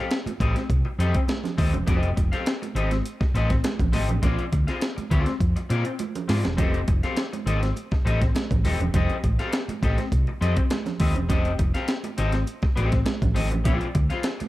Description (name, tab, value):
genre	funk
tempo	102 BPM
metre	4/4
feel	straight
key	F mixolydian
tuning	A4 = 440 Hz
part	electric guitar at the edge of break-up	accompaniment	0.0-14.4 s	C4 to F5	-29 LUFS	left 3 dB	lush chorus
part	breakbeat sampler-style drum kit	drums	0.1-14.5 s	hi-hat, kick drum, snare drum	-25 LUFS	equal	none
part	congas	percussion	0.1-14.5 s	none	-33 LUFS	right 7 dB	none
part	hollow-body short-scale fingered electric bass	bass	0.3-14.4 s	Eb1 to Bb2	-24 LUFS	equal	none
room	digital ambience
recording	dark, warm production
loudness	-21 LUFS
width	side -16 dB against mid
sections	0.0-14.5 A section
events	drum fill 5.4-6.6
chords	0.0 F9; 4.2 Bb9 (rootless); 6.6 F9; 13.7 Bb9